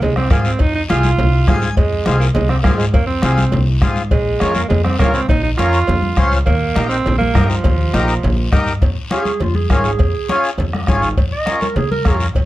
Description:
latin, cumbia; 204 BPM; 4/4; straight; F minor; A4 = 438 Hz
raspy tenor saxophone; second line; 0.0-8.5 s; F3 to F4; -20 LUFS; right 4 dB
upright bass; bass; 0.0-12.5 s; Ab1 to Db3; -17 LUFS; equal
congas; percussion; 0.0-12.5 s; -23 LUFS; left 1 dB
cowbell and timbales; percussion; 0.0-12.5 s; -27 LUFS; right 4 dB
guiro; percussion; 0.0-12.5 s; -32 LUFS; left 5 dB
bombo; percussion; 0.2-12.5 s; -18 LUFS; left 1 dB
accordion; accompaniment; 0.3-12.3 s; C4 to Ab5; -20 LUFS; left 2 dB
warm clarinet; melody; 9.1-12.2 s; F4 to Eb5; -21 LUFS; right 3 dB
light reverb; dark, warm production; -13 LUFS; side -15 dB against mid
0.0-8.8 A section; 8.8-12.5 B section
tenor saxophone solo 0.0-8.8; accordion fill 1.3-1.8; clarinet solo 8.8-12.5
0.0 Fm; 4.1 Bbm; 6.5 Ebadd9; 8.8 Db; 11.2 Bbm/F
0.02 0.31 | 0.60 0.90 1.19 1.48 | 1.77 2.07 2.36 2.65 | 2.95 3.24 3.53 3.83 | 4.12 4.41 4.71 5.00 | 5.29 5.59 5.88 6.17 | 6.47 6.76 7.05 7.35 | 7.64 7.94 8.23 8.52 | 8.82 9.11 9.41 9.70 | 10.00 10.29 10.59 10.88 | 11.18 11.47 11.77 12.06 | 12.36

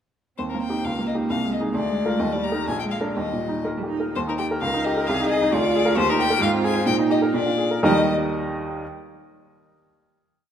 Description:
quick classical-period movement for piano trio; 118-135 BPM; 2/4; rubato; Eb major; A4 = 440 Hz
clear violin; melody; 0.4-8.1 s; Bb4 to Bb5; -25 LUFS; left 6 dB
rich cello; second line; 0.4-8.1 s; G3 to Bb4; -28 LUFS; right 6 dB
bright baby grand piano; accompaniment; 0.4-8.8 s; Bb1 to Eb5; -23 LUFS; right 1 dB
wet concert hall reverb, RT60 2.1 s; -20 LUFS; side -9 dB against mid
0.4-4.1 A section; 4.1-7.8 A section; 7.8-8.8 final chord
0.4 Eb; 0.8 Eb7/Db; 1.3 Ab/C; 1.7 Bb7/D; 2.2 Eb; 2.7 Bb7; 3.2 Eb; 4.6 Eb7/Db; 5.1 Ab/C; 5.5 Bb7/D; 6.0 Eb; 6.4 Fm/Ab; 6.9 Eb/Bb; 7.3 Bb7; 7.8 Eb
| 0.38 0.85 | 1.30 1.75 | 2.20 2.67 | 3.16 3.65 | 4.14 4.61 | 5.07 5.51 | 5.96 6.41 | 6.86 7.34 | 7.84 8.32

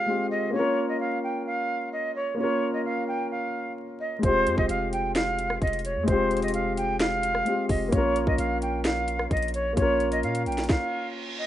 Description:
hip hop, trap; 130 BPM; 4/4; half-time; A4 = 444 Hz
jazz flute; melody; 0.0-11.5 s; C5 to G5; -27 LUFS; right 1 dB; low-pass filter, slapback echo
dark baby grand piano; accompaniment; 0.0-11.5 s; Ab3 to Bb4; -28 LUFS; left 1 dB; low-pass filter
long sustained 808-style bass; bass; 4.2-10.7 s; F1 to Bb2; -32 LUFS; equal
trap drum kit; drums; 4.2-10.8 s; hi-hat, kick drum, rim click, snare drum; -27 LUFS; equal
reverse cymbal; sound effects; 10.9-11.5 s; -36 LUFS; right 5 dB
little or no reverb; rough home demo mix, vinyl crackle, nothing above 10.8 kHz; -24 LUFS; side -12 dB against mid
0.0-11.5 A section
stop 10.7-11.5; reverse cymbal 10.9-11.5
0.0 Fmadd9; 0.5 Bbm; 4.2 Fmadd9; 7.9 Bbm
0.08 | 0.54 1.00 1.46 1.93 | 2.39 2.85 3.31 3.77 | 4.23 4.69 5.16 5.62 | 6.08 6.54 7.00 7.46 | 7.92 8.39 8.85 9.31 | 9.77 10.23 10.69 11.16

